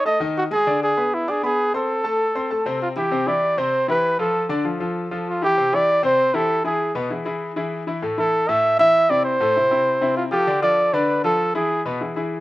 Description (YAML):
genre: latin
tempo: 196 BPM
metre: 4/4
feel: straight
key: A minor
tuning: A4 = 441 Hz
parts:
  - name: warm flugelhorn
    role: melody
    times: 0.0-11.8 s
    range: E4 to E5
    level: -18 LUFS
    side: right 1 dB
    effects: slapback echo
  - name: clear concert grand piano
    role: accompaniment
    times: 0.0-12.4 s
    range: A2 to D6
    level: -24 LUFS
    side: left 2 dB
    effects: slapback echo
room: little or no reverb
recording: recorded outdoors, with no room sound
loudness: -18 LUFS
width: side -17 dB against mid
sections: 0.0-3.1 A section; 3.1-12.4 B section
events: none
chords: 0.0 B13 (rootless); 0.7 E7b13/D (rootless); 1.9 Am; 3.1 Cadd9; 4.3 Dmadd9; 5.6 Am7; 6.8 E; 8.0 Esus4; 9.2 Am; 10.5 Dmadd9; 11.7 E